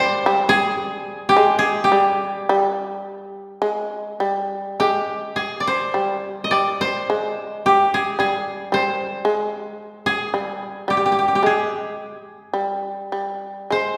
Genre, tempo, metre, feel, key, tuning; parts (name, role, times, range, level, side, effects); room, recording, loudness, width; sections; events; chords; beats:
japanese traditional, Japanese chamber music; 50-57 BPM; 2/4; rubato; A4 = 443 Hz
koto; melody; 0.0-14.0 s; G4 to Eb5; -22 LUFS; equal
shamisen; second line; 0.0-14.0 s; G3 to Ab3; -25 LUFS; equal
wet scoring stage reverb, RT60 1.9 s; heard from further back in the room; -21 LUFS; mono
0.0-4.8 A section; 4.8-14.0 B section
| 0.24 1.34 | 2.45 3.60 | 4.78 5.93 | 7.05 8.16 | 9.23 10.31 | 11.41 12.53 | 13.70